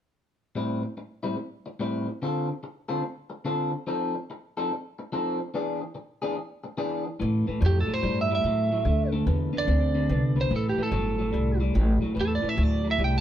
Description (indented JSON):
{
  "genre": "electric blues shuffle",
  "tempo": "145 BPM",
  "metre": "4/4",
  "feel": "swing 65% on 8ths",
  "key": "A minor",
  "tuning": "A4 = 439 Hz",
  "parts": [
    { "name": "electric guitar at the edge of break-up", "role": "riff", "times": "0.6-13.2 s", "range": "A2 to A4", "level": "-28 LUFS", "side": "left 1 dB", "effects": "none" },
    { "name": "upright bass", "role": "bass", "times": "7.2-13.2 s", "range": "G1 to A2", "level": "-25 LUFS", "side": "equal", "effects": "none" },
    { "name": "lightly driven lead guitar", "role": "melody", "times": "7.7-13.2 s", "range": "G4 to G5", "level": "-28 LUFS", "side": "right 4 dB", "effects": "none" }
  ],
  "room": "moderate studio reverb, RT60 0.8 s",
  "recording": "band playing live in one room",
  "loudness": "-24 LUFS",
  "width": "side -10 dB against mid",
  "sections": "0.6-7.2 A section; 7.2-13.2 B section",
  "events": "none",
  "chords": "0.6 Am7; 2.2 Dm7; 3.9 F7; 5.5 E7; 7.2 A5; 8.9 D5; 10.5 Am7"
}